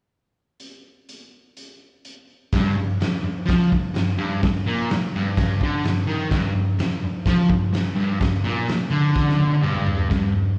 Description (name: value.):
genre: garage rock duo or trio.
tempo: 126 BPM.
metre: 4/4.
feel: straight.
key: G minor.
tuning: A4 = 441 Hz.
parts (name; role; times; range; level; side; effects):
raw garage drum kit; drums; 0.6-10.2 s; hi-hat, kick drum, snare drum, toms; -26 LUFS; equal; vintage 12-bit sampler grit.
fuzz guitar; riff; 2.5-10.5 s; G2 to F3; -23 LUFS; equal; distortion.
room: moderate lush hall reverb, RT60 2.0 s.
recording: live gig heard through the venue's PA, cassette tape, club reverb.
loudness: -22 LUFS.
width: mono.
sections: 0.6-2.5 A section; 2.5-10.1 B section.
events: drum fill 9.2-10.1.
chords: none.